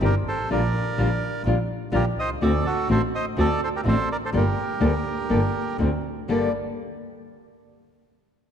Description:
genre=tango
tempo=125 BPM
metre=4/4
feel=rubato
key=G minor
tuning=A4 = 441 Hz
part: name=bandoneon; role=melody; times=0.0-6.5 s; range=F#4 to Eb5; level=-28 LUFS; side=right 4 dB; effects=none
part: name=nylon-string guitar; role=accompaniment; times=0.0-6.5 s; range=G2 to A4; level=-25 LUFS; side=left 3 dB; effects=none
part: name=clear double bass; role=bass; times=0.0-6.5 s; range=G1 to D2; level=-25 LUFS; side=right 1 dB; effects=none
room=moderate concert hall reverb, RT60 2.3 s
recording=dark, warm production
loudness=-21 LUFS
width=side -8 dB against mid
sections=0.0-6.3 A section; 6.3-8.2 B section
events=none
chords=0.0 Cm; 0.5 Gm7/Bb; 2.4 D7; 4.3 Gmadd9; 5.8 D7; 6.3 Gmadd9

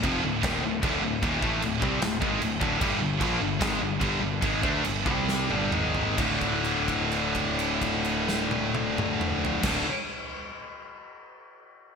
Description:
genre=heavy metal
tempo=128-152 BPM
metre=4/4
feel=straight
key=D phrygian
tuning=A4 = 440 Hz
part: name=heavy high-gain guitar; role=riff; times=0.0-9.9 s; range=D2 to D4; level=-29 LUFS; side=left 9 dB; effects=distortion
part: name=heavy high-gain guitar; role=riff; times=0.0-9.9 s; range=D2 to D4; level=-30 LUFS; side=right 11 dB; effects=distortion
part: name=sludgy distorted guitar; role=riff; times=0.0-9.9 s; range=D2 to D4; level=-34 LUFS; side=right 2 dB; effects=overdrive
part: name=overdriven picked electric bass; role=bass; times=0.0-9.8 s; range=D1 to D2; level=-33 LUFS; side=right 1 dB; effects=none
part: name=big rock drum kit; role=drums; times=0.0-9.7 s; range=crash cymbal, kick drum, snare drum, toms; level=-31 LUFS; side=right 1 dB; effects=gated reverb
room=moderate lush hall reverb, RT60 1.9 s, small room ambience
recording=bright 1980s-style digital production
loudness=-24 LUFS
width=side -6 dB against mid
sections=0.0-6.2 A section; 6.2-9.9 B section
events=slowing down 2.8-6.2; drum fill 5.3-6.2; held note 6.2-9.6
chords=0.0 Dm; 2.8 G5; 5.1 C5; 5.5 G5; 5.7 G#5; 6.2 D5

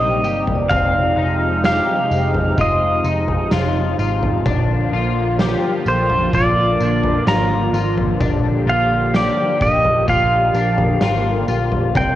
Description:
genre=dream pop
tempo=64 BPM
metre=4/4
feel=straight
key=unclear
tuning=A4 = 440 Hz
part: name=pedal steel guitar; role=melody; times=0.0-12.2 s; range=C5 to Bb5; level=-18 LUFS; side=right 1 dB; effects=cassette tape, tape echo
part: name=lush unison pad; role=sustained chords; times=0.0-12.2 s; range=C3 to G4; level=-22 LUFS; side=right 1 dB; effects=chorus, phaser, cassette tape
part: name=electric guitar at the edge of break-up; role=arpeggios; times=0.0-12.2 s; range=C4 to G4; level=-24 LUFS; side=left 8 dB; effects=ensemble chorus, cassette tape, tape echo
part: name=vintage muted picked electric bass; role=bass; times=0.0-12.2 s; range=F1 to C2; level=-22 LUFS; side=equal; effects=none
part: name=vibraphone with medium mallets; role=texture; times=0.0-11.8 s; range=F4 to D5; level=-30 LUFS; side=right 1 dB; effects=cassette tape, tape echo
part: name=oversized low-tuned drum kit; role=drums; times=0.2-12.2 s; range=kick drum, snare drum, tambourine, toms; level=-23 LUFS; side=equal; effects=cassette tape
room=light reverb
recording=home recording on cassette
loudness=-15 LUFS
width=side -13 dB against mid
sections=0.0-12.2 A section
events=none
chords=0.0 Cm7; 0.7 Fm7; 4.5 Bb

